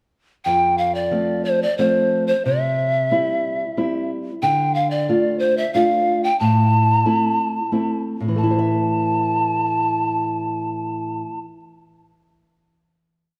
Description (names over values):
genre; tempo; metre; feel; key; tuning
andean folk, Andean ensemble; 91 BPM; 3/4; straight; A minor; A4 = 441 Hz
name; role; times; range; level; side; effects
mellow polished pan flute; melody; 0.4-11.4 s; C5 to A5; -22 LUFS; equal; none
nylon-string guitar; accompaniment; 0.5-11.6 s; F2 to E5; -24 LUFS; equal; none
room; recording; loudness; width
moderate scoring stage reverb, RT60 1.9 s; none; -20 LUFS; mono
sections
0.5-8.4 A section; 8.4-12.3 final chord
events
none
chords
0.5 F; 2.4 C; 4.4 Dm; 6.4 Am; 8.4 A5